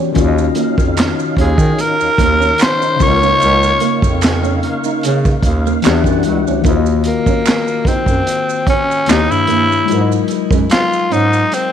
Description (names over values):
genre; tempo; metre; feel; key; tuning
R&B, neo-soul; 74 BPM; 4/4; swing 53% on 16ths; Eb dorian; A4 = 439 Hz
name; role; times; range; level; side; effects
electric guitar at the edge of break-up; second line; 0.0-11.6 s; Ab3 to Eb4; -23 LUFS; right 14 dB; warbly pitch drift
mellow tine electric piano; accompaniment; 0.0-11.7 s; Db3 to E5; -19 LUFS; left 10 dB; medium stereo tremolo
tonewheel organ; sustained chords; 0.2-6.6 s; Db3 to F#5; -22 LUFS; right 1 dB; chorus vibrato, slow rotary speaker
mellow bass clarinet; bass; 0.2-11.4 s; Db2 to Eb3; -17 LUFS; right 1 dB; none
crunchy breakbeat drum kit; drums; 0.2-11.7 s; handclaps, hi-hat, kick drum, snare drum; -16 LUFS; right 1 dB; none
maracas and finger snaps; percussion; 0.2-11.7 s; none; -29 LUFS; right 14 dB; none
growling tenor saxophone; melody; 1.4-11.7 s; Bb3 to Db5; -15 LUFS; equal; tape echo
room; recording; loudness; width
light reverb, studio reverb; 1960s-style stereo with parts hard left and right; -11 LUFS; side -9 dB against mid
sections
0.0-6.7 A section; 6.7-11.7 B section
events
tenor saxophone solo 6.7-11.7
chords
0.2 Ebm9; 3.0 Db69; 5.8 Em9; 6.7 Ebm7; 9.1 Eb7b9; 9.9 Ab7sus2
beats
| 0.17 0.98 1.79 2.60 | 3.41 4.22 5.03 5.84 | 6.65 7.46 8.27 9.08 | 9.89 10.71 11.52